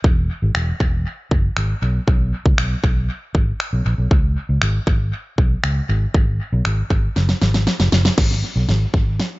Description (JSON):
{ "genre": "dance-pop", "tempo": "118 BPM", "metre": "4/4", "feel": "straight", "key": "unclear", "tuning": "A4 = 440 Hz", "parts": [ { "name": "vintage muted fingered electric bass", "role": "bass", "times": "0.0-9.2 s", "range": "E1 to C#2", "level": "-19 LUFS", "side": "equal", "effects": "sidechain pumping" }, { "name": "pop drum kit", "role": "drums", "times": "0.0-9.3 s", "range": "crash cymbal, finger snaps, kick drum, snare drum", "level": "-18 LUFS", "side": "equal", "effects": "dub echo" } ], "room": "little or no reverb", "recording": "echo-heavy mix, nothing above 7.6 kHz", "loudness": "-16 LUFS", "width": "side -21 dB against mid", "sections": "0.0-8.2 A section; 8.2-9.4 B section", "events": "drum fill 7.2-8.2, 8.2-9.4; build-up 8.2-9.4", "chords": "none" }